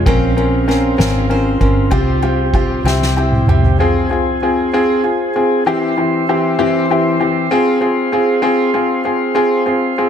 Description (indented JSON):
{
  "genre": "six-eight pop ballad",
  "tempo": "65 BPM (dotted quarters)",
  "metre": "6/8",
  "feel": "straight",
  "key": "F harmonic minor",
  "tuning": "A4 = 441 Hz",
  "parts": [
    { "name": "mellow tonewheel organ", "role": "sustained chords", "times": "0.0-10.1 s", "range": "E3 to C6", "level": "-20 LUFS", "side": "right 2 dB", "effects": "slow rotary speaker" },
    { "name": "picked steel-string acoustic guitar", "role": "arpeggios", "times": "0.0-4.4 s", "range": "G3 to C5", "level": "-25 LUFS", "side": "right 9 dB", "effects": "digital delay" },
    { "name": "vintage muted fingered electric bass", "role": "bass", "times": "0.0-3.8 s", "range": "G1 to C2", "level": "-17 LUFS", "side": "right 1 dB", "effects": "none" },
    { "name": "warm upright piano", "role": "accompaniment", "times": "0.1-10.1 s", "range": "E3 to Bb4", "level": "-15 LUFS", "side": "left 2 dB", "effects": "none" },
    { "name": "soft-mallet drum kit", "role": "drums", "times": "0.1-3.8 s", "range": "kick drum, ride cymbal, snare drum, toms", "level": "-18 LUFS", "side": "equal", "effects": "none" }
  ],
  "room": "light reverb, small room ambience",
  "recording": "none",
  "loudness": "-12 LUFS",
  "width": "side -8 dB against mid",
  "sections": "0.0-3.8 A section; 3.8-10.1 A section",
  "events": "drum fill 2.9-3.8",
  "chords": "0.1 Bbmadd9; 1.9 Csus4; 2.9 C; 3.8 Fm; 5.7 C/E; 7.5 Fm/C"
}